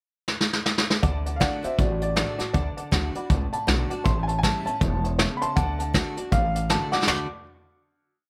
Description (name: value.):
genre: rockabilly.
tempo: 159 BPM.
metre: 4/4.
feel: swing 61% on 8ths.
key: D major.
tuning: A4 = 438 Hz.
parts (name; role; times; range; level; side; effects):
vintage brush drum kit; drums; 0.3-7.2 s; crash cymbal, hi-hat, kick drum, snare drum, toms; -26 LUFS; equal; none.
honky-tonk upright piano; accompaniment; 1.0-7.3 s; C#5 to B5; -39 LUFS; equal; none.
picked steel-string acoustic guitar; accompaniment; 1.0-7.3 s; A2 to F#4; -36 LUFS; equal; none.
upright bass; bass; 1.0-7.3 s; E1 to D2; -30 LUFS; equal; none.
clear upright piano; melody; 1.4-7.3 s; F#4 to D6; -31 LUFS; equal; none.
room: little or no reverb.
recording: none.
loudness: -24 LUFS.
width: mono.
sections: 0.0-1.0 pickup bar; 1.0-7.1 A section; 7.1-8.3 final chord.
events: drum fill 0.3-1.0, 6.9.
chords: 0.0 N.C.; 1.0 D; 4.1 A7; 5.6 D.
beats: 0.28 0.66 | 1.03 1.41 1.79 2.17 | 2.54 2.92 3.30 3.68 | 4.06 4.43 4.81 5.19 | 5.57 5.94 6.32 6.70 | 7.08.